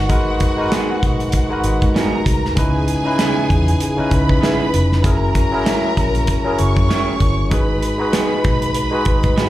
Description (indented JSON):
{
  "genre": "lush 1970s-style soul",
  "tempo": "97 BPM",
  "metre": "4/4",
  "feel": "swing 58% on 16ths",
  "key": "G# minor",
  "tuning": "A4 = 442 Hz",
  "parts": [
    { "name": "rich studio violin section", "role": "second line", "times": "0.0-9.5 s", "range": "F#4 to C#6", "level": "-23 LUFS", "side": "right 1 dB", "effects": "none" },
    { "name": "barky tine electric piano", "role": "accompaniment", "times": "0.0-9.5 s", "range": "C#3 to B4", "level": "-20 LUFS", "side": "left 1 dB", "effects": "overdrive, slapback echo" },
    { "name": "vintage muted fingered electric bass", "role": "bass", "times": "0.0-9.3 s", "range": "E#1 to G#2", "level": "-19 LUFS", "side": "equal", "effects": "none" },
    { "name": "modern studio drum kit", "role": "drums", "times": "0.1-9.5 s", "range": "hi-hat, kick drum, snare drum", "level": "-19 LUFS", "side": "equal", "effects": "none" },
    { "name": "electric guitar through a small old amp", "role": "riff", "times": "0.7-9.5 s", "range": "B3 to A#4", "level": "-22 LUFS", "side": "right 4 dB", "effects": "slapback echo" }
  ],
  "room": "little or no reverb",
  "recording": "live gig heard through the venue's PA, club reverb",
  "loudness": "-14 LUFS",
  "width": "side -14 dB against mid",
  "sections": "0.0-9.5 A section",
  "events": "none",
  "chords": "0.0 G#m7; 2.6 C#m7; 5.0 F#7; 7.5 G#m7"
}